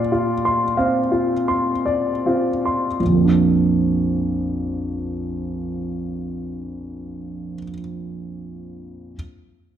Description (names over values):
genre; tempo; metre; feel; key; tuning
classical, impressionist solo piano; 24-33 BPM (dotted quarters); 6/8; rubato; Bb major; A4 = 439 Hz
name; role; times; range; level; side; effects
clear grand piano; solo; 0.0-9.2 s; Bb1 to C6; -20 LUFS; equal; none
room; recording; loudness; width
moderate recital hall reverb, RT60 1.4 s; dark, warm production; -18 LUFS; side -10 dB against mid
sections
0.0-3.0 A section; 3.0-7.0 B section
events
slowing down 0.0-3.0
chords
0.0 Bbadd9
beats
0.78 | 3.00 4.95